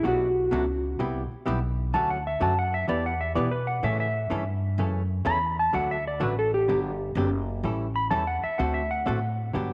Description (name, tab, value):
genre	country, western swing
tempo	126 BPM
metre	4/4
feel	swing 66% on 8ths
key	D major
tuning	A4 = 439 Hz
part	clean lap steel guitar	second line	0.0-9.7 s	F#4 to B5	-29 LUFS	equal	none
part	hollow-body jazz guitar	accompaniment	0.0-9.7 s	B2 to B4	-33 LUFS	equal	none
part	upright bass	bass	0.0-9.7 s	F#1 to B2	-32 LUFS	equal	none
room	wet plate reverb, RT60 2.5 s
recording	none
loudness	-27 LUFS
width	mono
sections	0.0-9.7 A section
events	electric slide guitar solo 0.0-9.7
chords	0.0 Bm7; 1.0 Cmaj7; 1.9 Dmaj7; 2.9 Em; 3.8 A; 5.7 D; 6.7 Gmaj7; 7.6 A7; 8.6 D7